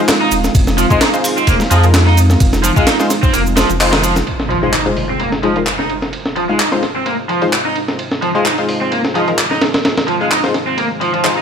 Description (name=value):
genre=breakbeat, breaks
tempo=129 BPM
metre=4/4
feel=swing 54% on 16ths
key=F minor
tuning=A4 = 441 Hz
part: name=dark analog pad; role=sustained chords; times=0.0-11.4 s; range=Ab3 to F5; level=-23 LUFS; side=right 2 dB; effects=chorus, vintage 12-bit sampler grit, sidechain pumping
part: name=band-passed chord stab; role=stabs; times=0.0-11.4 s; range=Ab3 to F5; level=-20 LUFS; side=left 3 dB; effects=chorus, cassette tape, dub echo
part: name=breakbeat sampler-style drum kit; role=drums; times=0.1-11.4 s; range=hi-hat, kick drum, ride cymbal, snare drum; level=-18 LUFS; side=equal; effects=low-pass filter on cymbals, small room ambience, low-pass filter on snare, low-pass filter on kick, low-pass filter on hats
part: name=electronic handclaps and shaker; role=drums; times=0.1-11.3 s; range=none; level=-20 LUFS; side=equal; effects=small room ambience
part: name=raw garage guitar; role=riff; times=0.2-11.4 s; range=Eb3 to Eb4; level=-18 LUFS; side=right 1 dB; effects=overdrive, low-pass filter, dub echo
part: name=saturated sub bass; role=bass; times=0.3-4.2 s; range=Eb1 to F2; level=-14 LUFS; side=equal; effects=none
part: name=impact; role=sound effects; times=4.3-6.1 s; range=none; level=-24 LUFS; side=right 1 dB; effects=none
room=light reverb, digital ambience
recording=none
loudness=-12 LUFS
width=side -7 dB against mid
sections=0.0-4.3 A section; 4.3-11.4 B section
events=kick drops out 3.3-4.3; band accent 3.8; impact 4.3-6.1; filter sweep on analog synth pad 4.3-11.4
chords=0.0 Fm7